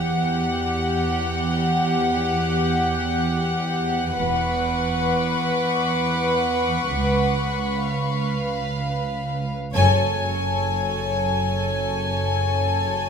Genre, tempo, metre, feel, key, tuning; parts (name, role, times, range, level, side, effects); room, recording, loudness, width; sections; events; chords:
cinematic, suspense film score; free time; A4 = 441 Hz
warm symphonic violin section; second line; 0.0-13.1 s; G4 to F#5; -23 LUFS; left 1 dB
dark chamber cello section; bass; 0.0-13.1 s; C#2 to F#2; -25 LUFS; right 3 dB
warm symphonic double bass section; bass; 4.2-13.1 s; E1 to C#2; -27 LUFS; right 2 dB
warm symphonic violin section; texture; 4.2-9.3 s; B5 to D6; -30 LUFS; left 4 dB
warm symphonic violin section; melody; 9.8-13.1 s; G#5; -24 LUFS; left 7 dB
moderate scoring stage reverb, RT60 1.8 s; minimal, uncompressed stereo recording; -20 LUFS; side -6 dB against mid
0.0-9.8 A section; 9.8-13.1 B section
band accent 9.8-10.7
0.0 Emadd9; 6.9 C#7; 9.8 F#madd9